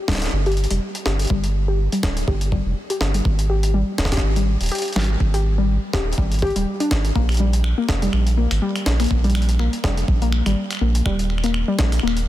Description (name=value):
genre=IDM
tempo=123 BPM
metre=4/4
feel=swing 56% on 16ths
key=unclear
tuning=A4 = 440 Hz
part: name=warbly dusty pluck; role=arpeggios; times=0.1-12.1 s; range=G3 to G4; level=-24 LUFS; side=left 3 dB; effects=chorus, digital delay
part: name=round analog bass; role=bass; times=0.1-12.3 s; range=D1 to Bb1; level=-20 LUFS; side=equal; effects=none
part: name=electronic kick drum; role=drums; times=0.1-11.9 s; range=none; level=-23 LUFS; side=equal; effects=overdrive
part: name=jungle sampler-style drum kit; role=drums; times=0.1-12.3 s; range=finger snaps, hi-hat, snare drum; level=-26 LUFS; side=equal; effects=overdrive, digital delay
room=little or no reverb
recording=dense, heavily limited modern master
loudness=-18 LUFS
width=side -14 dB against mid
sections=0.0-12.3 A section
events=none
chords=0.0 G5; 3.3 Ab5; 7.2 Bb5; 11.1 Eb5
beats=0.33 0.81 | 1.30 1.79 2.28 2.76 | 3.25 3.74 4.23 4.72 | 5.20 5.69 6.18 6.67 | 7.16 7.64 8.13 8.62 | 9.11 9.59 10.08 10.57 | 11.06 11.54 12.03